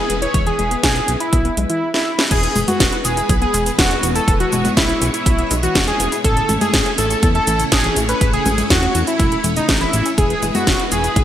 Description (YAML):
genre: italo disco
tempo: 122 BPM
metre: 4/4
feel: straight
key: E major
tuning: A4 = 440 Hz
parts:
  - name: wide unison lead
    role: melody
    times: 0.0-11.2 s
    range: D#4 to C#5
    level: -19 LUFS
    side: equal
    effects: digital delay
  - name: string machine, full ensemble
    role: sustained chords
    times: 0.0-11.2 s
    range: G#3 to C#5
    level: -24 LUFS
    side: equal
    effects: ensemble chorus
  - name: analog pluck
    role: arpeggios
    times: 0.0-11.1 s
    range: C#3 to G#4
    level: -29 LUFS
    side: left 3 dB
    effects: chorus, digital delay
  - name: chorused synth bass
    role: bass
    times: 0.0-11.2 s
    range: E1 to E2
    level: -22 LUFS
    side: equal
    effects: none
  - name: house drum kit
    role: drums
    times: 0.1-11.2 s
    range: cabasa, congas, crash cymbal, hi-hat, snare drum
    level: -19 LUFS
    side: equal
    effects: gated reverb
  - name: electronic kick drum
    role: drums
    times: 0.3-11.2 s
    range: none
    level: -19 LUFS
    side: equal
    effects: none
room: moderate plate reverb, RT60 2.0 s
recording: bright 1980s-style digital production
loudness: -14 LUFS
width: side -11 dB against mid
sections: 0.0-2.3 A section; 2.3-11.2 B section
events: drum fill 1.9-2.3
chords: 0.0 E; 6.2 A; 10.2 E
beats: | 0.34 0.83 1.33 1.82 | 2.31 2.80 3.29 3.79 | 4.28 4.77 5.26 5.75 | 6.25 6.74 7.23 7.72 | 8.21 8.70 9.20 9.69 | 10.18 10.67 11.16